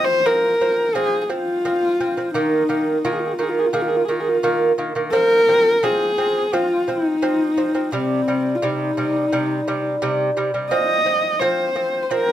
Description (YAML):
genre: mongolian traditional, Mongolian folk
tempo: 86 BPM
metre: 4/4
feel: straight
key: F minor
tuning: A4 = 440 Hz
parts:
  - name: dark horsehead fiddle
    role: melody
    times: 0.0-12.3 s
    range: C4 to Eb5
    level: -19 LUFS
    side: left 1 dB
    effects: none
  - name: lute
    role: arpeggios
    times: 0.0-12.3 s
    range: C3 to C4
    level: -22 LUFS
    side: right 2 dB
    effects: none
room: light reverb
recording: minimal, uncompressed stereo recording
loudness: -17 LUFS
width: side -12 dB against mid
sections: 0.0-12.3 A section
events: none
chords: 0.0 F5; 2.3 Eb5; 5.1 F5; 7.9 C5; 10.7 F5